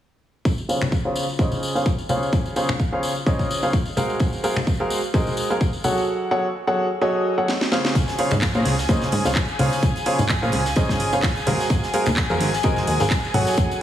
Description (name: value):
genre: piano house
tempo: 128 BPM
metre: 4/4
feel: swing 55% on 16ths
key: Db major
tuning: A4 = 440 Hz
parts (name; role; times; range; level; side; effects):
- electronic kick drum; drums; 0.5-13.7 s; none; -22 LUFS; equal; none
- tambourine and congas; percussion; 0.5-13.8 s; none; -30 LUFS; left 3 dB; none
- clear baby grand piano; riff; 0.7-13.8 s; Db3 to Gb5; -22 LUFS; equal; sidechain pumping, low-pass filter, dub echo
- house drum kit; drums; 0.8-4.7, 7.5-13.4 s; finger snaps, handclaps, hi-hat, snare drum; -27 LUFS; equal; none
- dark chamber violin section; sustained chords; 8.0-13.8 s; Ab4 to Ab5; -27 LUFS; equal; vintage 12-bit sampler grit, sidechain pumping
- plucky analog bass; bass; 8.0-13.7 s; Gb1 to Bb2; -23 LUFS; equal; tube saturation, sidechain pumping
- tight metal drum kit; drums; 8.0-13.8 s; hi-hat, snare drum; -36 LUFS; right 2 dB; none
room: light reverb, small room ambience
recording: heavily compressed radio sound, studio reverb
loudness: -19 LUFS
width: side -11 dB against mid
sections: 0.5-8.0 A section; 8.0-13.8 B section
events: filter sweep on grand piano 0.5-8.0; drum fill 7.5-8.0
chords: 0.5 Dbmaj7; 4.0 Ab13; 6.1 Gbmadd9; 8.0 Dbmaj7; 11.5 Ab13